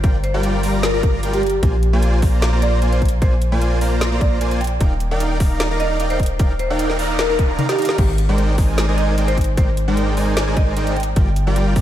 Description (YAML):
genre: future bass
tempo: 151 BPM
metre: 4/4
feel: half-time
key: Eb major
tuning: A4 = 439 Hz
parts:
  - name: dense compressed supersaw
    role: riff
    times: 0.0-11.8 s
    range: G3 to Bb5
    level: -22 LUFS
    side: equal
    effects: cassette tape, sidechain pumping, tape echo
  - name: long sustained 808-style bass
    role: bass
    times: 0.0-11.8 s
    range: Eb1 to Bb1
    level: -19 LUFS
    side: equal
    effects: sidechain pumping
  - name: electronic kick drum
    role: drums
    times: 0.0-11.8 s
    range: none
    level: -17 LUFS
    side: equal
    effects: none
  - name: trap drum kit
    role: drums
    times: 0.0-11.8 s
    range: crash cymbal, hi-hat, snare drum, toms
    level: -26 LUFS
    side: left 1 dB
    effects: none
  - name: buzzing marimba with hard mallets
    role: melody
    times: 0.2-11.2 s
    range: G4 to G5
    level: -25 LUFS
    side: equal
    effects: sidechain pumping, analog delay
  - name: noise sweep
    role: sound effects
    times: 6.7-8.0 s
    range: none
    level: -30 LUFS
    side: right 4 dB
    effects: none
room: light reverb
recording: none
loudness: -15 LUFS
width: side -12 dB against mid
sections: 0.0-11.8 A section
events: noise sweep 6.7-8.0; drum fill 7.6-8.0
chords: 0.0 Gm7; 1.6 Bb9; 4.8 Ebmaj9; 8.0 Abmaj9#11; 11.2 Gm7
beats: | 0.04 0.44 0.83 1.23 | 1.63 2.02 2.42 2.82 | 3.22 3.62 4.01 4.41 | 4.81 5.20 5.60 6.00 | 6.40 6.79 7.19 7.59 | 7.99 8.38 8.78 9.18 | 9.57 9.97 10.37 10.77 | 11.16 11.56